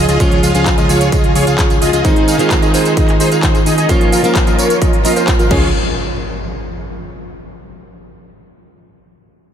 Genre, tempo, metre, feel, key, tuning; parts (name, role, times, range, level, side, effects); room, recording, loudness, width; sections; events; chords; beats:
EDM, festival progressive house; 130 BPM; 4/4; straight; Db major; A4 = 444 Hz
fingerpicked plugged-in steel-string acoustic guitar; accompaniment; 0.0-5.7 s; Eb3 to Ab4; -17 LUFS; right 2 dB; sidechain pumping, ping-pong delay
dense compressed supersaw; riff; 0.0-5.7 s; Eb4 to F5; -16 LUFS; equal; sidechain pumping, low-pass filter, ping-pong delay
fat analog bass; bass; 0.0-2.0, 5.5-5.7 s; Db2; -17 LUFS; equal; sidechain pumping
sub drop and impact; sound effects; 0.0-0.2, 5.5-7.4 s; -26 LUFS; equal
big-room dance drum kit; drums; 0.1-5.6 s; crash cymbal, handclaps, hi-hat, tambourine; -21 LUFS; equal
electronic kick drum; drums; 0.2-5.6 s; -14 LUFS; equal
moderate huge ambient reverb, RT60 4.8 s; dreamy mix soaked in reverb; -10 LUFS; side -9 dB against mid
0.0-5.7 A section; 5.7-7.6 B section
impact 0.0; filter sweep on supersaw synth 0.0-5.7
0.0 Db; 2.0 Ab; 3.9 Bbm; 5.5 Db; 5.7 N.C.
| 0.20 0.66 1.12 1.59 | 2.05 2.51 2.97 3.43 | 3.89 4.36 4.82 5.28 | 5.74 6.20 6.66 7.12